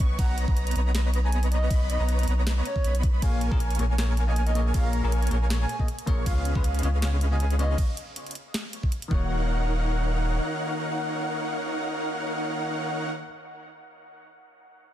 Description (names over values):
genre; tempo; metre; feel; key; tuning
future bass; 158 BPM; 4/4; swing 54% on 16ths, half-time; Eb minor; A4 = 442 Hz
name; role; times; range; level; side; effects
airy dreamy lead; arpeggios; 0.0-13.1 s; F5 to C#6; -37 LUFS; equal; chorus, sidechain pumping, dub echo
dense compressed supersaw; riff; 0.0-13.1 s; Bb3 to C#6; -32 LUFS; equal; sidechain pumping, dub echo
saturated sub bass; bass; 0.0-10.4 s; Eb1 to Db2; -24 LUFS; equal; sidechain pumping
electronic kick drum; drums; 0.0-9.2 s; none; -24 LUFS; equal; studio reverb
trap drum kit; drums; 0.0-9.1 s; hi-hat, ride cymbal, snare drum; -36 LUFS; right 1 dB; studio reverb
breathy flute-like synth lead; melody; 0.2-7.8 s; C#5 to Ab5; -35 LUFS; right 2 dB; chorus, sidechain pumping, ping-pong delay
bell-like tine electric piano; accompaniment; 3.2-13.3 s; Bb2 to Eb5; -35 LUFS; left 3 dB; phaser, sidechain pumping, dub echo
room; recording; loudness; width
digital ambience; dense, heavily limited modern master; -23 LUFS; side -12 dB against mid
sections
0.0-9.3 A section; 9.3-12.3 B section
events
drop 0.0-9.3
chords
0.0 Bmaj9; 3.2 Bbm7; 6.3 Db7; 9.1 Ebm7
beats
| 0.19 0.57 0.95 1.33 | 1.71 2.09 2.47 2.85 | 3.23 3.61 3.98 4.37 | 4.75 5.12 5.50 5.88 | 6.26 6.64 7.02 7.40 | 7.78 8.16 8.54 8.92 | 9.30 9.68 10.06 10.44 | 10.82 11.20 11.58 11.96